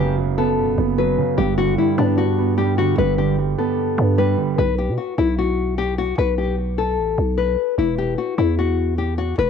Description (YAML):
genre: hip hop, trap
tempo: 150 BPM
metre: 4/4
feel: half-time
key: B minor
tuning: A4 = 440 Hz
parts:
  - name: nylon-string guitar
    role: melody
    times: 0.0-9.5 s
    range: D4 to B4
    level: -21 LUFS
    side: left 9 dB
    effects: cassette tape
  - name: dark concert grand piano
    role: accompaniment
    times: 0.0-4.6 s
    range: F#2 to B3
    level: -21 LUFS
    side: right 11 dB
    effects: cassette tape
  - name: growling 808-style bass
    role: bass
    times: 0.0-9.5 s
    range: E1 to B2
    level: -21 LUFS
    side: right 1 dB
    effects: none
room: light reverb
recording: home recording on cassette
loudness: -17 LUFS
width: side -7 dB against mid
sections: 0.0-4.6 A section; 4.6-9.5 B section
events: none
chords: 0.0 F#sus4; 1.4 G; 4.6 B5; 7.8 E5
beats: 0.18 0.58 0.98 | 1.38 1.78 2.18 2.58 | 2.98 3.38 3.78 4.18 | 4.58 4.98 5.38 5.78 | 6.18 6.58 6.98 7.38 | 7.78 8.18 8.58 8.98 | 9.38